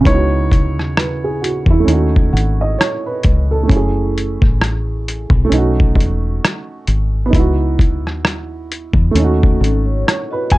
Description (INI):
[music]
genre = lo-fi hip hop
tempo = 66 BPM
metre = 4/4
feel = swing 57% on 16ths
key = C# minor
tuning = A4 = 440 Hz
[part]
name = dark upright piano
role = accompaniment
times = 0.0-10.6 s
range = C#3 to F#5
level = -19 LUFS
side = right 3 dB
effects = cassette tape, low-pass filter
[part]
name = deep dub fingered electric bass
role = bass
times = 0.0-10.6 s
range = E1 to E2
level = -17 LUFS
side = equal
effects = none
[part]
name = felt-muted upright piano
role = melody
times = 0.1-2.7, 10.5-10.6 s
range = C#5 to G#5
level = -24 LUFS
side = equal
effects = low-pass filter, analog delay
[part]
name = lo-fi sampler-style drum kit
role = drums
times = 0.1-10.6 s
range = hi-hat, kick drum, rim click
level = -14 LUFS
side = equal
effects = overdrive
[part]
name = vibraphone with soft mallets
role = second line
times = 9.4-10.6 s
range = A3 to D#5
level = -23 LUFS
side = left 4 dB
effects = low-pass filter, analog delay
[sound]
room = little or no reverb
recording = dark, warm production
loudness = -13 LUFS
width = side -18 dB against mid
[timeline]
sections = 0.0-10.6 A section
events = none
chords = 0.1 C#m11; 1.9 D#m7b5; 3.7 F#m9; 5.5 B9; 7.3 C#m11; 9.1 D#m7b5